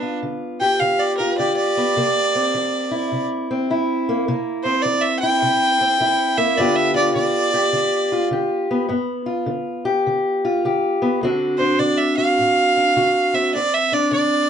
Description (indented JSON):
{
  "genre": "acoustic country blues, solo or duo",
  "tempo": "104 BPM",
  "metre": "4/4",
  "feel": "swing 65% on 8ths",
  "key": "G mixolydian",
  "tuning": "A4 = 440 Hz",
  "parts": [
    { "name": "rich fiddle", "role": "melody", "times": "0.0-14.5 s", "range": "D4 to G5", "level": "-18 LUFS", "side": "right 2 dB", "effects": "none" },
    { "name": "fingerpicked steel-string acoustic guitar", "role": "accompaniment", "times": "0.0-14.5 s", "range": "D2 to G4", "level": "-20 LUFS", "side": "left 1 dB", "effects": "none" }
  ],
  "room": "moderate studio ambience, RT60 0.5 s",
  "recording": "nothing above 10.6 kHz",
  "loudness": "-17 LUFS",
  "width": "side -8 dB against mid",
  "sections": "0.0-14.5 A section",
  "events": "none",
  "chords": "0.0 G7; 1.9 C7; 6.6 G7; 11.2 D7"
}